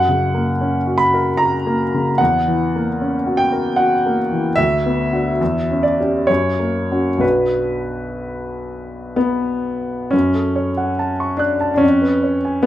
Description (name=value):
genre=classical, romantic character piece for solo piano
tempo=60-78 BPM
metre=3/4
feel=rubato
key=B minor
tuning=A4 = 440 Hz
part: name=clear grand piano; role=solo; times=0.0-12.7 s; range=B1 to F#6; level=-16 LUFS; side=equal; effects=none
room=moderate large studio reverb, RT60 0.8 s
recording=none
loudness=-15 LUFS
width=side -13 dB against mid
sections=0.0-10.1 A section; 10.1-12.7 B section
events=none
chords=0.0 F#; 2.2 F#7/E; 4.6 Bm/D; 5.4 C#dim/E; 6.3 F#; 7.2 Bm; 10.1 F#m; 11.8 C#7/E#